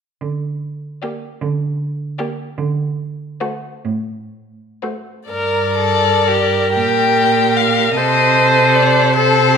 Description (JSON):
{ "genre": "classical, slow romantic movement for string quartet", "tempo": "39-52 BPM (dotted quarters)", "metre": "6/8", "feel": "rubato", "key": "G minor", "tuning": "A4 = 437 Hz", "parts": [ { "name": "clear cello", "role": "bass", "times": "0.2-9.6 s", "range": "G2 to D3", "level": "-21 LUFS", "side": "right 5 dB", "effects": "none" }, { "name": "rich violin", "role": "melody", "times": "1.0-9.6 s", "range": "C5 to G5", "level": "-17 LUFS", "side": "left 7 dB", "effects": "none" }, { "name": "clear violin", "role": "second line", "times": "1.0-9.6 s", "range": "F#4 to Bb4", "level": "-19 LUFS", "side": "left 4 dB", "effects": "none" }, { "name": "clear viola", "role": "accompaniment", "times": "1.0-9.6 s", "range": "A3 to C5", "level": "-18 LUFS", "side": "right 3 dB", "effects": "none" } ], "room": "wet recital hall reverb, RT60 1.5 s", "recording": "minimal, uncompressed stereo recording", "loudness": "-14 LUFS", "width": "side -6 dB against mid", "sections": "0.2-5.3 A section; 5.3-9.6 B section", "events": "none", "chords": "0.2 Gm/D; 2.6 D7; 5.3 Gm; 8.0 Adim/C" }